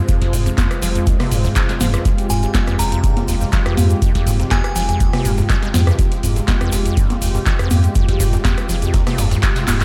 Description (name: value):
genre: acid house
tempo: 122 BPM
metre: 4/4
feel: straight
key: F minor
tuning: A4 = 435 Hz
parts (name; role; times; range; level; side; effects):
- warm analog pad; sustained chords; 0.0-9.8 s; C3 to C5; -27 LUFS; equal; chorus, sidechain pumping
- acid bass, square; riff; 0.1-9.8 s; F1 to Ab3; -25 LUFS; equal; cassette tape, sidechain pumping, diffuse ambient delay
- booming analog drum machine; drums; 0.1-9.8 s; congas, handclaps, hi-hat, rim click, snare drum, toms; -24 LUFS; equal; none
- breakbeat sampler-style drum kit; drums; 0.1-9.8 s; hi-hat, snare drum; -37 LUFS; equal; none
- electronic kick drum; drums; 0.1-9.5 s; none; -20 LUFS; equal; none
- egg shaker; percussion; 0.1-9.8 s; none; -34 LUFS; equal; none
- warm sub bass; bass; 0.3-9.8 s; Eb1 to F2; -21 LUFS; equal; sidechain pumping
- glassy synth bell; melody; 2.3-5.0 s; Ab5 to Bb5; -29 LUFS; equal; chorus, diffuse ambient delay
room: light reverb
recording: none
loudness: -17 LUFS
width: mono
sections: 0.0-9.8 A section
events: drum fill 9.7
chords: 0.0 Fm